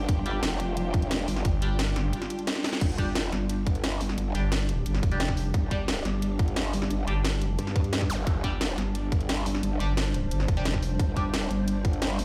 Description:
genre	dark technical drum and bass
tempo	176 BPM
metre	4/4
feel	straight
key	unclear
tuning	A4 = 440 Hz
part	swarming drone	sustained chords	0.0-12.2 s	G3 to C5	-38 LUFS	equal	built-in reverb, sidechain pumping
part	growl bass	bass	0.0-12.2 s	F1 to G2	-32 LUFS	equal	chorus, tube saturation, sidechain pumping
part	dark studio string section	texture	0.0-2.8 s	D4 to G5	-41 LUFS	equal	sidechain pumping
part	drum and bass drum kit	drums	0.1-12.2 s	crash cymbal, hi-hat, snare drum	-34 LUFS	equal	overdrive
part	electronic kick drum	drums	0.1-11.9 s	none	-28 LUFS	equal	overdrive
part	band-passed chord stab	stabs	0.3-11.2 s	G3 to G4	-40 LUFS	equal	phaser, subtle chorus, dub echo
part	growling FM bass	bass	1.4-2.1, 4.3-7.6, 9.8-11.0 s	F1 to G1	-29 LUFS	equal	none
part	zap	sound effects	8.1-8.2 s	none	-40 LUFS	equal	none
room	light reverb, digital ambience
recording	played on a big sound system in a bare room, stone room reverb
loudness	-27 LUFS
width	mono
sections	0.0-2.8 A section; 2.8-12.2 A section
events	drop 0.0-2.8, 2.8-12.2; break 2.1-2.8; drum fill 2.6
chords	0.0 G5

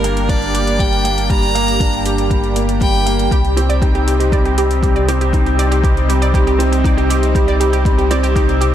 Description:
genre	piano and strings electronica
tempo	119 BPM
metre	4/4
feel	straight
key	unclear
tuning	A4 = 440 Hz
part	clear violin	melody	0.0-3.3 s	Bb4 to Bb5	-21 LUFS	equal	ping-pong delay
part	lush unison pad	sustained chords	0.0-8.7 s	C3 to G4	-21 LUFS	left 1 dB	chorus, phaser, sidechain pumping
part	felt-muted upright piano	riff	0.0-8.7 s	G3 to G4	-20 LUFS	right 1 dB	ping-pong delay
part	round analog bass	bass	0.0-8.7 s	G1 to C2	-17 LUFS	equal	sidechain pumping
part	electronic hi-hat	drums	0.0-8.7 s	none	-28 LUFS	equal	none
part	electronic kick drum	drums	0.3-8.5 s	none	-16 LUFS	equal	none
part	analog pluck	arpeggios	3.3-8.7 s	G4 to D5	-22 LUFS	right 4 dB	chorus, sidechain pumping, ping-pong delay
room	light reverb, digital ambience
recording	none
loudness	-12 LUFS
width	side -11 dB against mid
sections	0.0-8.7 A section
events	none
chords	0.0 Gm; 3.3 Cm

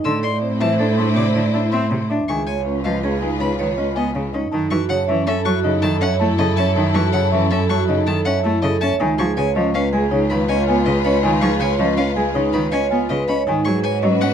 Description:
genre	classical, minimalist pattern music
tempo	161 BPM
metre	6/4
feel	straight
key	F# dorian from 4.5 s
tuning	A4 = 440 Hz
part	marimba with soft mallets	melody	0.0-14.3 s	B4 to C6	-25 LUFS	left 6 dB	none
part	rich violin	arpeggios	0.0-14.3 s	D#5 to E6	-27 LUFS	left 6 dB	none
part	vibraphone with medium hard mallets	arpeggios	0.0-14.3 s	C4 to D5	-22 LUFS	right 6 dB	none
part	rich cello	bass	0.0-14.3 s	C#2 to A2	-22 LUFS	right 1 dB	none
part	rich cello	accompaniment	0.1-14.3 s	C3 to D4	-23 LUFS	equal	none
part	rich studio string section	sustained chords	0.1-14.3 s	E4 to C5	-27 LUFS	left 6 dB	none
room	light reverb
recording	dark, warm production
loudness	-16 LUFS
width	side -8 dB against mid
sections	0.0-4.5 A section; 4.5-14.3 B section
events	none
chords	0.1 Am; 2.3 C#7; 4.5 F#m7; 9.0 C#7; 13.5 G#m7

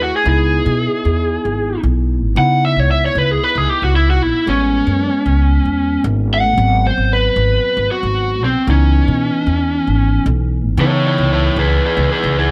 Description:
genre	straight-eighth soul blues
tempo	114 BPM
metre	4/4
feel	swing 53% on 16ths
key	C# minor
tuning	A4 = 440 Hz
part	lead guitar through a small cranked amp	melody	0.0-12.5 s	B#3 to F#5	-19 LUFS	equal	overdrive
part	tine electric piano	accompaniment	0.0-12.5 s	E3 to G#4	-25 LUFS	equal	phaser
part	upright bass	bass	0.0-12.5 s	G#1 to C#3	-18 LUFS	equal	none
room	light reverb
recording	none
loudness	-15 LUFS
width	mono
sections	0.0-12.5 A section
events	lead electric guitar solo 0.0-12.5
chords	0.3 C#m7; 4.5 Amaj7; 6.6 G#7#9; 8.7 C#m7

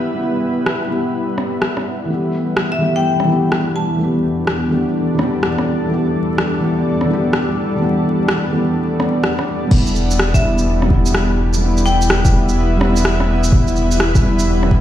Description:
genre	future garage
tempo	126 BPM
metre	4/4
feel	swing 64% on 16ths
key	unclear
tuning	A4 = 440 Hz
part	felt-muted upright piano	accompaniment	0.0-14.8 s	E3 to G4	-19 LUFS	equal	sidechain pumping, low-pass filter, tape echo
part	granular cloud pad	sustained chords	0.0-14.8 s	E2 to E5	-20 LUFS	left 1 dB	built-in reverb, sidechain pumping
part	deep house drum kit	drums	0.7-14.7 s	crash cymbal, rim click, shaker	-21 LUFS	equal	low-pass filter on snare, low-pass filter on cymbals, low-pass filter on perc, low-pass filter on room
part	marimba with hard mallets	melody	2.7-4.4, 10.3-12.5 s	E5 to A5	-22 LUFS	left 2 dB	analog delay
part	warm sub bass	bass	9.7-14.8 s	E1	-17 LUFS	equal	sidechain pumping
part	electronic kick drum	drums	9.7-14.8 s	none	-14 LUFS	equal	none
room	moderate lush hall reverb, RT60 1.9 s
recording	played on a big sound system in a bare room, stone room reverb, vinyl crackle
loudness	-14 LUFS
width	side -11 dB against mid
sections	0.0-9.7 A section; 9.7-14.8 B section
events	none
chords	0.0 Em; 2.1 Gadd9/E

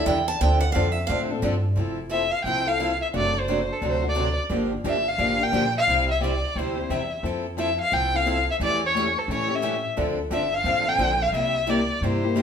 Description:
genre	acoustic string swing (jazz manouche)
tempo	176 BPM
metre	4/4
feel	swing 61% on 8ths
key	F major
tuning	A4 = 440 Hz
part	picked acoustic archtop guitar	second line	0.0-1.2 s	E5 to A5	-26 LUFS	right 6 dB	none
part	picked steel-string acoustic guitar	accompaniment	0.0-12.4 s	C3 to A4	-28 LUFS	left 5 dB	none
part	upright bass	bass	0.0-12.4 s	F1 to A2	-28 LUFS	equal	none
part	picked steel-string acoustic guitar	accompaniment	0.1-12.4 s	C3 to A4	-30 LUFS	right 4 dB	none
part	warm violin	melody	2.1-12.4 s	A4 to G5	-24 LUFS	left 1 dB	none
room	wet large studio reverb, RT60 1.0 s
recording	band playing live in one room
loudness	-21 LUFS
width	side -7 dB against mid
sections	0.0-1.8 A section; 1.8-12.4 B section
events	steel-string acoustic guitar solo 0.0-1.8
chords	0.4 Dm7; 1.8 Fmaj7; 3.1 D7/F#; 4.5 Gm7; 5.9 C; 7.2 Fmaj7; 8.6 A7/E; 10.0 Dm7; 11.3 C7

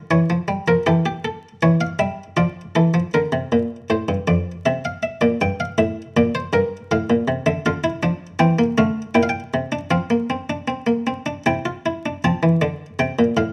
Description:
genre	classical, baroque-style 3-part fugue for harpsichord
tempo	79 BPM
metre	3/4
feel	straight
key	F major from 7.7 s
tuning	A4 = 440 Hz
part	buff-stop harpsichord	solo	0.0-13.5 s	F2 to A5	-20 LUFS	equal	none
room	moderate stone room reverb, RT60 1.0 s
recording	vinyl crackle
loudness	-21 LUFS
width	mono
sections	0.0-3.1 A section; 3.1-12.2 B section; 12.2-13.5 C section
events	none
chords	0.1 A/E; 0.9 A7(no3)/E; 2.4 Dm/F; 3.1 Bb; 4.7 Bbadd9; 5.4 Gm; 6.9 F/A; 7.7 Dm; 9.2 Gm/Bb; 9.9 Csus4/F; 11.5 C; 12.2 F

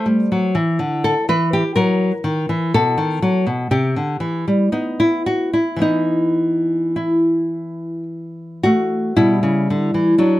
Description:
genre	classical, baroque-style dance for nylon-string guitar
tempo	52-63 BPM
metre	3/4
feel	rubato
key	E minor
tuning	A4 = 444 Hz
part	nylon-string guitar	solo	0.0-10.4 s	B2 to C5	-16 LUFS	left 1 dB	none
room	moderate studio reverb, RT60 0.6 s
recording	dark, warm production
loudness	-16 LUFS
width	side -15 dB against mid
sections	0.0-9.2 A section; 9.2-10.4 A section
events	none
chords	0.0 Am; 1.7 F#7; 2.7 B7; 3.7 C; 4.7 N.C.; 5.8 E5; 9.2 Bm

